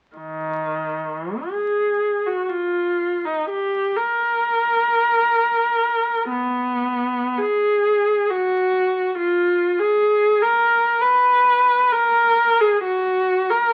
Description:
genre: classical, free, expressive piece for unaccompanied viola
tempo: 41-71 BPM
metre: 3/4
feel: rubato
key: unclear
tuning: A4 = 442 Hz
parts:
  - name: dark viola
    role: solo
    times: 0.2-13.7 s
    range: Eb3 to Cb5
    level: -20 LUFS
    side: equal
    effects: none
room: moderate studio reverb, RT60 0.9 s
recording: very old 78 rpm record, vinyl crackle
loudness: -20 LUFS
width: mono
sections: 0.2-13.7 A section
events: none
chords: none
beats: | 0.17 1.47 2.50 | 3.50 4.43 5.36 | 6.31 7.38 8.30 | 9.16 10.09 10.99 | 11.89 12.81 13.71

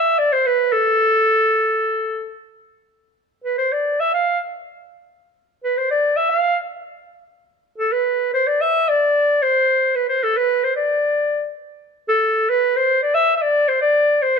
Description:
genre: klezmer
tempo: 111 BPM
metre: 4/4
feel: straight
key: unclear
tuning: A4 = 440 Hz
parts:
  - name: warm clarinet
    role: solo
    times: 0.0-14.4 s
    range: A4 to F5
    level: -16 LUFS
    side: equal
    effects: none
room: moderate recital hall reverb, RT60 1.7 s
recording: close, detailed microphones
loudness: -16 LUFS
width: side -5 dB against mid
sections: 0.0-11.8 A section; 11.8-14.4 B section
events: none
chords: none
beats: 0.47 | 1.01 1.55 2.10 2.64 | 3.18 3.73 4.27 4.81 | 5.35 5.89 6.43 6.98 | 7.52 8.06 8.60 9.14 | 9.68 10.21 10.75 11.29 | 11.83 12.37 12.90 13.44 | 13.98

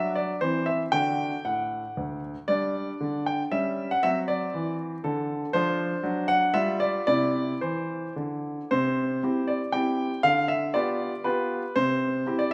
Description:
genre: classical-period piano sonatina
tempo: 118 BPM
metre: 3/4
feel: rubato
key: C major from 5.5 s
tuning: A4 = 439 Hz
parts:
  - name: clear grand piano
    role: solo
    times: 0.0-12.5 s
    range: D2 to G5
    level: -27 LUFS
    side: equal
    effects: none
room: wet recital hall reverb, RT60 1.7 s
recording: none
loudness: -27 LUFS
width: mono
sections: 0.0-8.7 A section; 8.7-12.5 B section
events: none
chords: 0.4 C/E; 0.9 D; 2.5 G5; 3.5 Em69/G; 4.0 D7; 5.5 Dm7/F; 6.0 D7/F#; 6.5 G5; 7.1 C; 10.2 G7/D; 11.8 C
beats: 0.41 | 0.93 1.45 1.97 | 2.49 3.01 3.52 | 4.03 4.54 5.04 | 5.54 6.04 6.55 | 7.08 7.63 8.17 | 8.71 9.23 9.73 | 10.24 10.74 11.25 | 11.76 12.26

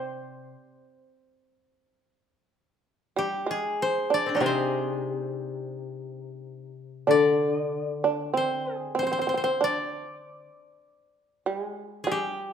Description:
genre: japanese traditional, Japanese chamber music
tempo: 43-50 BPM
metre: 4/4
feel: rubato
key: C hirajoshi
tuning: A4 = 440 Hz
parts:
  - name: koto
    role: melody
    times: 0.0-12.5 s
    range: C4 to D5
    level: -29 LUFS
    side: left 2 dB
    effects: none
  - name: shamisen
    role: second line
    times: 0.0-12.5 s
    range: G3 to D4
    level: -28 LUFS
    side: right 4 dB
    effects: none
  - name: koto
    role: accompaniment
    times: 0.0-10.5 s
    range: C3 to D3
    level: -27 LUFS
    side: left 4 dB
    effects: none
room: moderate recital hall reverb, RT60 1.3 s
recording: none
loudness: -24 LUFS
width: side -8 dB against mid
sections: 0.0-7.1 A section; 7.1-12.5 B section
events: none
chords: none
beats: 0.71 | 1.94 3.17 4.42 5.76 | 7.10 8.36 9.61 10.85 | 12.08

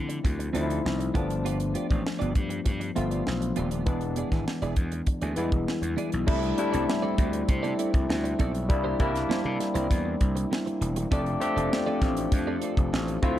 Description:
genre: polished 1980s jazz-funk pop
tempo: 99 BPM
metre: 4/4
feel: straight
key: unclear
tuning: A4 = 439 Hz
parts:
  - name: barky tine electric piano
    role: accompaniment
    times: 0.0-13.4 s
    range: E3 to G4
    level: -29 LUFS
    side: left 2 dB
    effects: overdrive, lush chorus
  - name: gritty slap bass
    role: bass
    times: 0.0-13.4 s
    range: D#1 to D3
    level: -30 LUFS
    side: equal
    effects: overdrive
  - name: clean electric guitar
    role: riff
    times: 0.1-13.4 s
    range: Bb3 to E5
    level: -35 LUFS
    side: right 6 dB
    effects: analog chorus
  - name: tight funk drum kit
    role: drums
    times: 0.1-13.4 s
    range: crash cymbal, hi-hat, kick drum, snare drum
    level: -28 LUFS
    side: equal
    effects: none
  - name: pedal harmonium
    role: sustained chords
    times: 6.3-13.4 s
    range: D3 to E5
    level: -36 LUFS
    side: equal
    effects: none
room: light reverb, studio reverb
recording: dark, warm production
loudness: -24 LUFS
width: side -12 dB against mid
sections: 0.0-6.3 A section; 6.3-13.4 B section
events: none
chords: 0.0 Dm7; 1.1 G7; 3.9 E7; 6.3 C69; 8.7 C7; 11.1 F6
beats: 0.24 0.85 | 1.45 2.05 2.66 3.26 | 3.87 4.47 5.07 5.68 | 6.28 6.88 7.49 8.09 | 8.70 9.30 9.90 10.51 | 11.11 11.71 12.32 12.92

